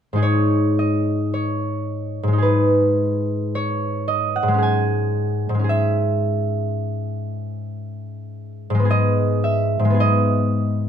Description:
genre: classical, solo harp piece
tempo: 56 BPM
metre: 4/4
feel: rubato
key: G# minor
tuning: A4 = 442 Hz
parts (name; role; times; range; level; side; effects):
- concert harp; solo; 0.1-10.9 s; G#2 to G#5; -18 LUFS; equal; none
room: light reverb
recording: close, detailed microphones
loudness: -18 LUFS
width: side -8 dB against mid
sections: 0.2-10.9 A section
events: none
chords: 0.2 G#m; 4.6 C#m/G#; 8.9 G#m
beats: | 0.23 1.34 2.44 3.54 | 4.63 5.69 6.75 7.83 | 8.91 9.97

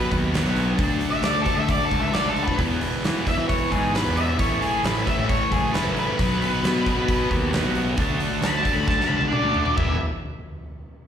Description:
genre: blues rock power trio and southern rock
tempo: 134 BPM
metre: 4/4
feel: straight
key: E mixolydian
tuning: A4 = 440 Hz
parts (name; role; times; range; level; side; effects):
- octave-fuzz lead guitar; melody; 0.0-10.0 s; G#4 to B5; -25 LUFS; left 1 dB; distortion, slapback echo, plate reverb
- sludgy distorted guitar; riff; 0.0-10.0 s; E2 to D4; -26 LUFS; left 1 dB; overdrive, slapback echo
- fuzz picked electric bass; bass; 0.0-10.0 s; E1 to E3; -26 LUFS; equal; overdrive
- overdriven tonewheel organ; sustained chords; 0.1-10.0 s; B3 to B4; -34 LUFS; right 2 dB; slow rotary speaker, plate reverb
- huge arena drum kit; drums; 0.1-9.9 s; hi-hat, kick drum, snare drum, toms; -26 LUFS; equal; none
room: light reverb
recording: live gig heard through the venue's PA, recital hall reverb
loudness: -20 LUFS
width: side -8 dB against mid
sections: 0.0-9.8 A section; 9.8-11.1 B section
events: drum fill 8.9-9.8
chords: 0.0 B; 0.8 D; 2.6 E; 4.4 A; 6.2 B; 8.0 D; 9.8 E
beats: 0.34 | 0.79 1.24 1.69 2.14 | 2.59 3.04 3.49 3.94 | 4.39 4.84 5.29 5.74 | 6.18 6.63 7.08 7.53 | 7.98 8.43 8.88 9.32 | 9.77

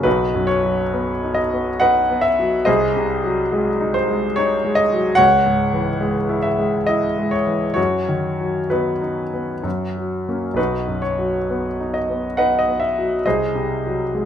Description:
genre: classical, romantic character piece for solo piano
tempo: 63-75 BPM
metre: 3/4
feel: rubato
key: B major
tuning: A4 = 440 Hz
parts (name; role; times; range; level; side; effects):
- clear grand piano; solo; 0.0-14.3 s; B1 to F#5; -17 LUFS; equal; none
room: moderate large studio reverb, RT60 1.1 s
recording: minimal, uncompressed stereo recording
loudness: -17 LUFS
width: side -9 dB against mid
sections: 0.1-14.3 A section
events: none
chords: 0.1 B; 2.7 G#7/B#; 5.2 C#m; 7.8 B/F#; 9.6 F#; 10.6 B; 13.2 G#7/B#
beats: | 0.06 0.93 1.80 | 2.67 3.53 4.37 | 5.18 5.99 6.86 | 7.77 8.71 9.65 | 10.58 11.49 12.37 | 13.25 14.13

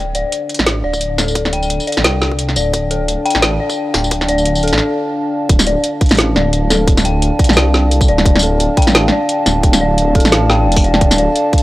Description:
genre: half-time drum and bass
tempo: 174 BPM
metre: 4/4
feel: swing 57% on 16ths, half-time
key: D minor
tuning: A4 = 438 Hz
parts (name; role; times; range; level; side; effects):
- dark analog pad; sustained chords; 0.0-11.6 s; D4 to A5; -20 LUFS; equal; chorus, vintage 12-bit sampler grit, sidechain pumping
- dark detuned saw bass; bass; 0.0-11.3 s; D1 to C2; -17 LUFS; equal; none
- drum and bass drum kit; drums; 0.1-11.6 s; hi-hat, snare drum, tambourine; -15 LUFS; equal; high-pass filter on hats, high-pass filter on snare, high-pass filter on perc, high-pass filter on room
- dark detuned synth bell; arpeggios; 0.2-11.6 s; A4 to G5; -19 LUFS; left 3 dB; chorus, phaser, low-pass filter, tape echo
- electronic kick drum; drums; 0.9-11.6 s; none; -13 LUFS; equal; high-pass filter on kick, high-pass filter on room
room: little or no reverb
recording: dry, gritty hardware recording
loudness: -11 LUFS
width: side -17 dB against mid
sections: 0.0-5.5 A section; 5.5-11.6 B section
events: build-up 0.0-5.5; break 4.8-5.5; drop 5.5-11.6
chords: 0.0 Dm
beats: 0.32 0.67 1.01 | 1.36 1.70 2.05 2.39 | 2.74 3.08 3.43 3.77 | 4.12 4.46 4.80 5.15 | 5.50 5.84 6.18 6.53 | 6.87 7.22 7.56 7.91 | 8.25 8.60 8.94 9.29 | 9.63 9.98 10.32 10.67 | 11.01 11.36

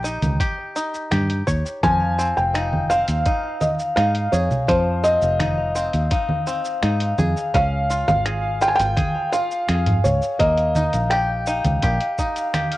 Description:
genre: folktronica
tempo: 84 BPM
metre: 4/4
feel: straight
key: F minor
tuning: A4 = 440 Hz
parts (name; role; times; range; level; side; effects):
- bluegrass banjo; arpeggios; 0.0-12.8 s; F3 to Db5; -28 LUFS; equal; plate reverb, analog delay
- fingered electric bass; bass; 0.0-12.0 s; F1 to Ab2; -22 LUFS; equal; none
- lo-fi sampler-style drum kit; drums; 0.0-12.8 s; congas, finger snaps, hi-hat, shaker; -25 LUFS; right 1 dB; studio reverb
- electronic kick drum; drums; 0.4-12.3 s; none; -24 LUFS; equal; studio reverb
- felt-muted upright piano; melody; 1.8-12.5 s; C5 to Ab5; -21 LUFS; equal; cassette tape, analog delay
- vibraphone with medium mallets; second line; 2.0-12.8 s; F5 to F6; -27 LUFS; left 3 dB; analog delay
room: light reverb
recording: home recording on cassette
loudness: -18 LUFS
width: side -17 dB against mid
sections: 0.0-12.8 A section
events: none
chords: 0.0 Eb7; 1.8 Fm7; 7.5 Db; 10.4 Eb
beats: 0.40 1.12 | 1.83 2.55 3.26 3.98 | 4.69 5.40 6.12 6.83 | 7.55 8.26 8.98 9.69 | 10.40 11.12 11.83 12.55

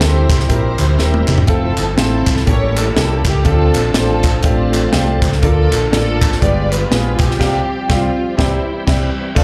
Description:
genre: uptempo gospel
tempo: 122 BPM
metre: 4/4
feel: swing 59% on 8ths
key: unclear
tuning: A4 = 443 Hz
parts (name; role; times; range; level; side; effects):
- dark studio string section; melody; 0.0-9.4 s; G3 to D5; -23 LUFS; equal; plate reverb, slapback echo
- clear baby grand piano; accompaniment; 0.0-9.4 s; G2 to C5; -24 LUFS; equal; plate reverb, slapback echo
- bright tonewheel organ; sustained chords; 0.0-9.4 s; E3 to Bb4; -29 LUFS; equal; none
- mellow French horn section; sustained chords; 0.0-9.4 s; F3 to A4; -30 LUFS; equal; none
- fingered electric bass; bass; 0.0-9.4 s; Eb1 to D2; -19 LUFS; equal; none
- crisp fusion drum kit; drums; 0.0-9.4 s; crash cymbal, hi-hat, kick drum, snare drum, toms; -19 LUFS; equal; none
- group handclap; percussion; 0.3-7.3 s; none; -29 LUFS; equal; none
room: light reverb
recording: live gig heard through the venue's PA, club reverb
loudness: -15 LUFS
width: mono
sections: 0.0-9.4 A section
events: drum fill 1.0-1.5; band accent 7.4-9.4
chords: 0.0 C7; 1.5 Fmaj7; 2.5 A7b9; 3.5 Dm7; 5.4 Bbmaj7; 6.4 G7b9; 7.4 Csus4; 8.4 C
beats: 0.01 0.50 0.99 | 1.49 1.98 2.48 2.97 | 3.46 3.96 4.45 4.94 | 5.43 5.92 6.42 6.91 | 7.40 7.89 8.38 8.87 | 9.36

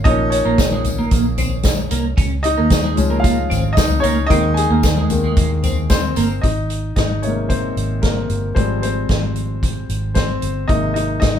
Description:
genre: piano-driven pop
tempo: 113 BPM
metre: 4/4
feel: straight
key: Ab major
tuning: A4 = 440 Hz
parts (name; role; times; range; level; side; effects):
- clear baby grand piano; accompaniment; 0.0-11.4 s; C3 to Ab5; -20 LUFS; left 2 dB; none
- vintage muted fingered electric bass; bass; 0.0-11.4 s; G1 to Eb2; -21 LUFS; right 1 dB; none
- twelve-string electric guitar; riff; 0.1-6.3 s; Ab3 to Db4; -22 LUFS; right 3 dB; phaser
- soft-mallet drum kit; drums; 0.1-11.3 s; hi-hat, kick drum, snare drum, toms; -19 LUFS; equal; none
- tambourine; percussion; 0.3-6.3 s; none; -33 LUFS; left 5 dB; none
room: moderate studio reverb, RT60 0.7 s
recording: band playing live in one room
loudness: -15 LUFS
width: side -9 dB against mid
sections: 0.0-6.4 A section; 6.4-11.4 B section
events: grand piano solo 0.0-6.4, 6.4-11.4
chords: 0.0 Bbm; 2.2 Db; 4.3 Ebsus4; 6.4 Abadd9; 8.6 Fmadd9/Ab; 10.7 Abadd9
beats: | 0.06 0.59 1.12 1.65 | 2.18 2.71 3.25 3.78 | 4.31 4.84 5.37 5.90 | 6.43 6.97 7.50 8.03 | 8.56 9.10 9.63 10.16 | 10.69 11.23

